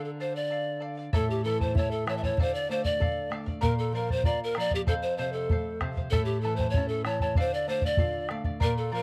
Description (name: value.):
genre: andean folk, Andean ensemble.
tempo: 96 BPM.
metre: 2/4.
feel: straight.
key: D minor.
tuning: A4 = 441 Hz.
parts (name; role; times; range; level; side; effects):
polished pan flute; melody; 0.0-9.0 s; G4 to E5; -32 LUFS; equal; none.
charango; accompaniment; 0.0-9.0 s; E4 to A5; -39 LUFS; equal; none.
nylon-string guitar; accompaniment; 0.0-9.0 s; F2 to A4; -36 LUFS; equal; none.
bombo; percussion; 1.1-8.8 s; none; -31 LUFS; equal; none.
room: little or no reverb.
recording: close, detailed microphones.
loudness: -28 LUFS.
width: mono.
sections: 0.0-1.1 A section; 1.1-9.0 A section.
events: none.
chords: 0.0 Dm; 1.1 A; 2.4 Dm; 3.6 Bb; 4.9 F; 6.1 A; 7.4 Dm.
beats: 0.50 | 1.13 1.75 | 2.37 3.00 | 3.62 4.24 | 4.87 5.49 | 6.11 6.74 | 7.36 7.98 | 8.60.